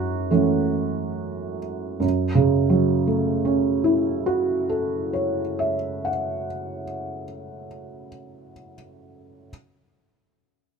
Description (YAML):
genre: neoclassical minimalist piano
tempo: 69 BPM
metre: 3/4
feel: rubato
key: F# minor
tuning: A4 = 439 Hz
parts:
  - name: felt-muted upright piano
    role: solo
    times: 0.0-9.5 s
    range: F#2 to F#5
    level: -21 LUFS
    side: right 2 dB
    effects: none
room: light reverb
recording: minimal, uncompressed stereo recording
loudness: -21 LUFS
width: side -5 dB against mid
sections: 0.0-2.0 A section; 2.0-7.3 B section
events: slowing down 0.0-2.0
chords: 0.0 F#m7